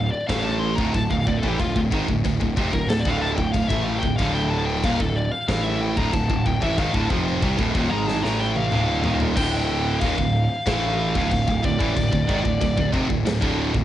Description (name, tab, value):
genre	heavy metal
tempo	93 BPM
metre	4/4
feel	straight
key	D minor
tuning	A4 = 441 Hz
part	high-gain lead guitar	melody	0.0-12.9 s	F4 to C6	-27 LUFS	left 2 dB	distortion, cassette tape
part	heavy high-gain guitar	riff	0.0-13.8 s	D2 to A3	-29 LUFS	left 8 dB	distortion, cassette tape
part	high-gain distorted guitar	riff	0.0-13.8 s	D2 to A3	-25 LUFS	right 5 dB	distortion, cassette tape
part	overdriven electric guitar	riff	0.0-13.8 s	D2 to A3	-30 LUFS	left 1 dB	cassette tape
part	fuzz picked electric bass	bass	0.0-13.8 s	D1 to C2	-26 LUFS	left 1 dB	overdrive
part	big rock drum kit	drums	0.3-13.8 s	china cymbal, crash cymbal, kick drum, snare drum, toms	-26 LUFS	equal	cassette tape
room	light reverb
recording	home recording on cassette, nothing above 10.8 kHz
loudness	-19 LUFS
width	side -12 dB against mid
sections	0.0-9.4 A section; 9.4-13.8 B section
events	lead electric guitar solo 0.0-9.4; drum fill 8.1-9.4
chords	0.0 Dm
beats	0.30 0.95 | 1.60 2.25 2.90 3.54 | 4.19 4.84 5.49 6.14 | 6.79 7.43 8.08 8.73 | 9.38 10.02 10.67 11.32 | 11.97 12.61 13.26